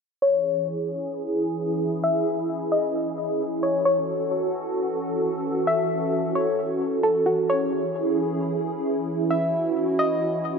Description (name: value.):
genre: hip hop, atmospheric cloud-rap.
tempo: 132 BPM.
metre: 4/4.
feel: half-time.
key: C# minor.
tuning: A4 = 440 Hz.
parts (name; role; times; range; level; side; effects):
soft round pluck; melody; 0.2-10.2 s; F#4 to E5; -25 LUFS; left 2 dB; chorus, low-pass filter, ping-pong delay.
hollow soft pad; sustained chords; 0.2-10.6 s; E3 to A4; -25 LUFS; right 1 dB; ensemble chorus, low-pass filter.
room: wet plate reverb, RT60 3.8 s.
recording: rough home demo mix.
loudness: -22 LUFS.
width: side -5 dB against mid.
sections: 0.2-10.6 A section.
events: filter sweep 0.2-10.6.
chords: 0.2 C#m; 3.9 F#m7; 7.5 C#m.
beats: | 0.22 0.67 1.13 1.58 | 2.04 2.49 2.95 3.40 | 3.86 4.31 4.76 5.22 | 5.67 6.13 6.58 7.04 | 7.49 7.95 8.40 8.86 | 9.31 9.77 10.22.